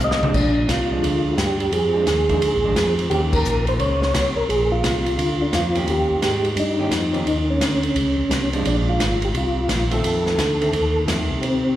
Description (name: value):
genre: soul jazz organ trio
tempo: 173 BPM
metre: 4/4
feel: swing 64% on 8ths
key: unclear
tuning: A4 = 439 Hz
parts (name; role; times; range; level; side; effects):
- percussive tonewheel organ; melody; 0.0-11.8 s; C4 to Eb5; -21 LUFS; equal; slow rotary speaker, chorus vibrato, plate reverb, slapback echo
- tonewheel organ; bass; 0.0-11.8 s; Ab1 to C3; -22 LUFS; equal; overdrive, chorus vibrato, stopped rotary speaker
- open jazz drum kit; drums; 0.0-11.5 s; crash cymbal, hi-hat, kick drum, ride cymbal, snare drum, toms; -25 LUFS; equal; none
- hollow-body jazz guitar; accompaniment; 0.2-3.6, 5.8-11.6 s; Eb3 to G4; -27 LUFS; right 3 dB; plate reverb, slapback echo
room: moderate club reverb, RT60 0.5 s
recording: live gig heard through the venue's PA, recital hall reverb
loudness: -18 LUFS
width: side -13 dB against mid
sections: 0.3-11.8 A section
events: drum fill 0.0-0.3; band accent 3.3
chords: 0.3 Bb7; 3.1 Eb7; 4.5 Bb; 5.9 Eb7; 8.6 Bb7; 10.0 F7